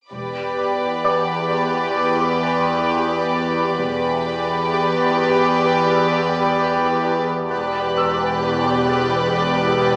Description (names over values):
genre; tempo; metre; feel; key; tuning
cinematic, suspense film score; 65 BPM; 4/4; straight; E minor; A4 = 441 Hz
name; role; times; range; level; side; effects
warm studio violin section; melody; 0.1-10.0 s; D5; -25 LUFS; equal; none
warm studio violin section; second line; 0.1-10.0 s; G4 to B4; -20 LUFS; equal; none
pulsing gated texture; sustained chords; 0.1-10.0 s; G4 to D5; -24 LUFS; equal; chorus, built-in reverb
warm studio cello section; bass; 0.1-10.0 s; E2; -27 LUFS; equal; none
warm studio double bass section; bass; 0.1-10.0 s; E1; -31 LUFS; equal; none
overtone-sweeping drone; drone; 0.7-10.0 s; E2; -24 LUFS; equal; chorus, built-in reverb, phaser
clear studio violin section; texture; 0.1-10.0 s; B5 to F#6; -30 LUFS; equal; none
bright grand piano; texture; 1.0-10.0 s; D5 to E6; -27 LUFS; equal; none
room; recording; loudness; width
wet stone room reverb, RT60 1.3 s; small speaker sound; -16 LUFS; side -31 dB against mid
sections
0.1-7.5 A section; 7.5-10.0 B section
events
none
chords
0.1 Em7